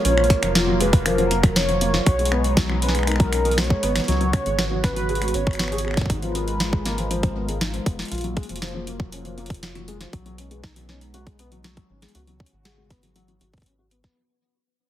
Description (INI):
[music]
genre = IDM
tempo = 119 BPM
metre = 4/4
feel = straight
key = unclear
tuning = A4 = 439 Hz
[part]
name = warm velvety synth lead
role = melody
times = 0.0-6.1 s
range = A#4 to C#5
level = -25 LUFS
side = right 1 dB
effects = chorus, tape echo
[part]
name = phased analog pad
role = sustained chords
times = 0.0-14.1 s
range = C#3 to B4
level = -29 LUFS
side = right 1 dB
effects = phaser, chorus, sidechain pumping
[part]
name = felt-muted upright piano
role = arpeggios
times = 0.0-14.1 s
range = E#3 to G#4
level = -28 LUFS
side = left 2 dB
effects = low-pass filter, tape echo
[part]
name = round analog bass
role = bass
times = 0.0-14.1 s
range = E#1 to C#2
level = -26 LUFS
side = equal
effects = tube saturation
[part]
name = booming analog drum machine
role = drums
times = 0.0-14.1 s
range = finger snaps, hi-hat, snare drum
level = -25 LUFS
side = equal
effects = none
[part]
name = electronic kick drum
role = drums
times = 0.3-14.1 s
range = none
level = -19 LUFS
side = equal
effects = none
[sound]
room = light reverb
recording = heavily compressed radio sound, multiband compression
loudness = -19 LUFS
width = side -12 dB against mid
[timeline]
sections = 0.0-14.2 A section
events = fade-out 0.0-14.2; filter sweep on analog synth bass 0.0-14.2; filter sweep on analog synth pad 0.0-14.2; filter sweep on felt piano 0.0-14.2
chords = 0.0 F#maj7; 2.1 B69; 4.1 C#7sus4; 6.1 G#m69; 8.1 F#maj7; 10.1 B6; 12.1 C#7sus4